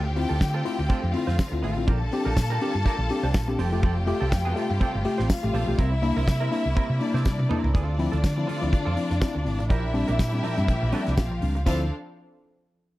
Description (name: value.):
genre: disco.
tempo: 123 BPM.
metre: 4/4.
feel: swing 56% on 16ths.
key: D minor.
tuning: A4 = 438 Hz.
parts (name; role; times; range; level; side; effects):
clear studio string section; second line; 0.0-11.9 s; D4 to A5; -32 LUFS; left 2 dB; none.
semi-hollow electric guitar; accompaniment; 0.0-11.8 s; C4 to C5; -35 LUFS; right 6 dB; lush chorus.
tine electric piano; accompaniment; 0.0-11.9 s; Bb2 to G4; -28 LUFS; left 3 dB; none.
rich studio string section; sustained chords; 0.0-11.9 s; C3 to A4; -35 LUFS; equal; none.
hollow-body short-scale fingered electric bass; bass; 0.0-11.9 s; F1 to D3; -26 LUFS; equal; none.
damped 70s drum kit; drums; 0.2-11.8 s; crash cymbal, hi-hat, kick drum, snare drum, toms; -24 LUFS; equal; none.
tambourine; percussion; 0.4-11.9 s; none; -44 LUFS; left 7 dB; none.
room: small room ambience.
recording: dark, warm production.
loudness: -22 LUFS.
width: side -17 dB against mid.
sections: 0.0-7.7 A section; 7.7-11.7 B section; 11.7-13.0 C section.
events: drum fill 7.3-7.7.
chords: 0.0 Dm7; 1.9 Bb6; 3.6 Fadd9; 5.8 C7; 7.7 Dm7; 9.7 Bb6; 11.7 Dm7.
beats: 0.41 0.90 1.39 | 1.88 2.37 2.85 3.34 | 3.83 4.32 4.81 5.30 | 5.79 6.28 6.76 7.25 | 7.74 8.23 8.72 9.21 | 9.70 10.19 10.69 11.18 | 11.67.